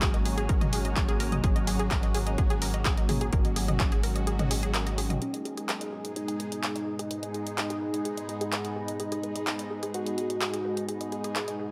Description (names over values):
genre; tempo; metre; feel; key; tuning
melodic techno; 127 BPM; 4/4; straight; G# minor; A4 = 440 Hz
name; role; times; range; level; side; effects
evolving wavetable pad; sustained chords; 0.0-11.7 s; G#2 to D#4; -41 LUFS; equal; chorus, built-in reverb, phaser, sidechain pumping
unison pluck; arpeggios; 0.0-11.7 s; G#4 to D#5; -40 LUFS; equal; sidechain pumping, digital delay
brassy analog pad; stabs; 0.0-11.7 s; F#3 to G#4; -38 LUFS; equal; chorus, sidechain pumping, digital delay
tight sequencer bass; bass; 0.0-5.2 s; G#1; -33 LUFS; equal; sidechain pumping
overtone-sweeping drone; drone; 0.3-11.7 s; G#2 to D#3; -47 LUFS; equal; none
electronic kick drum; drums; 0.0-3.9 s; none; -29 LUFS; equal; overdrive
punchy analog drum machine; drums; 0.0-11.6 s; handclaps, hi-hat, toms; -35 LUFS; equal; none
granular cloud pad; texture; 0.0-11.7 s; F#4 to B5; -44 LUFS; equal; built-in reverb, sidechain pumping
resonant sweep polysynth; melody; 5.2-11.7 s; C#4 to G#4; -38 LUFS; equal; chorus, sidechain pumping, digital delay
room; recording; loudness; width
light reverb, digital ambience; none; -29 LUFS; mono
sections
0.0-5.2 A section; 5.2-11.7 B section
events
kick drops out 4.3-5.2; filter sweep on analog polysynth 5.2-11.7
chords
0.0 F#add9/G#; 5.2 G#m